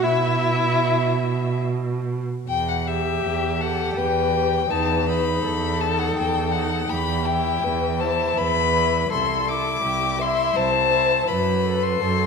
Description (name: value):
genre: classical, slow romantic movement for string quartet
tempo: 82 BPM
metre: 3/4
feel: rubato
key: E minor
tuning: A4 = 441 Hz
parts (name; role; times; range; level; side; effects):
- clear violin; melody; 0.0-12.3 s; E5 to D6; -24 LUFS; left 8 dB; none
- rich violin; second line; 0.0-12.3 s; G4 to E5; -26 LUFS; left 3 dB; none
- clear viola; accompaniment; 0.0-12.3 s; D#4 to A4; -28 LUFS; equal; none
- rich cello; bass; 0.0-12.3 s; C2 to B2; -25 LUFS; right 4 dB; none
room: moderate scoring stage reverb, RT60 1.7 s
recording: minimal, uncompressed stereo recording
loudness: -19 LUFS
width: side -5 dB against mid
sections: 0.0-2.5 A section; 2.5-12.3 B section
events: none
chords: 0.0 E5/B; 1.7 N.C.; 2.5 Em; 4.7 B7/E; 6.9 Em; 9.1 C; 11.3 F#dim